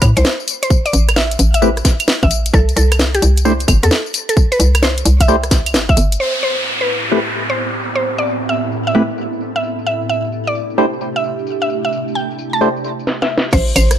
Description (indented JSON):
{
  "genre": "UK garage, two-step garage",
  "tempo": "131 BPM",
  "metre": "4/4",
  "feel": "swing 66% on 16ths",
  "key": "A minor",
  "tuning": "A4 = 440 Hz",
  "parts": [
    { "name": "hollow knocking FM bass", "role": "bass", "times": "0.0-6.2, 13.5-14.0 s", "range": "G1 to A2", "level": "-14 LUFS", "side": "equal", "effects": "none" },
    { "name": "electronic kick drum", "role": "drums", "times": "0.0-6.0, 13.5-13.6 s", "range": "none", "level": "-13 LUFS", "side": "equal", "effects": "none" },
    { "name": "garage drum kit", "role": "drums", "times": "0.0-14.0 s", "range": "claves, crash cymbal, hi-hat, rim click, snare drum, tambourine", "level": "-17 LUFS", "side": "equal", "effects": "low-pass filter on hats, low-pass filter on snare, low-pass filter on perc, low-pass filter on cymbals" },
    { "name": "mallet-like synth pluck", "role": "melody", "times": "0.2-13.9 s", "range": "G4 to A5", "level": "-20 LUFS", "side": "equal", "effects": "chorus, digital delay" },
    { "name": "percussive organ stab", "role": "stabs", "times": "1.6-12.7 s", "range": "A3 to C5", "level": "-17 LUFS", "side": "equal", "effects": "chorus, phaser, dub echo" },
    { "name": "ethereal airy pad", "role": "sustained chords", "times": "6.8-14.0 s", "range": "A2 to A4", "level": "-23 LUFS", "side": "right 2 dB", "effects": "ensemble chorus, built-in reverb, phaser, sidechain pumping" },
    { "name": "downlifter", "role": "sound effects", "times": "6.2-9.9 s", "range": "none", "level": "-22 LUFS", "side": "equal", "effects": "none" }
  ],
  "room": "light reverb",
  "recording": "none",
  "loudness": "-13 LUFS",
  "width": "side -10 dB against mid",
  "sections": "0.0-6.2 A section; 6.2-13.5 B section",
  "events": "drum fill 13.1-13.5",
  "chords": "0.0 A5; 2.5 C5; 6.2 Am9; 9.9 C6"
}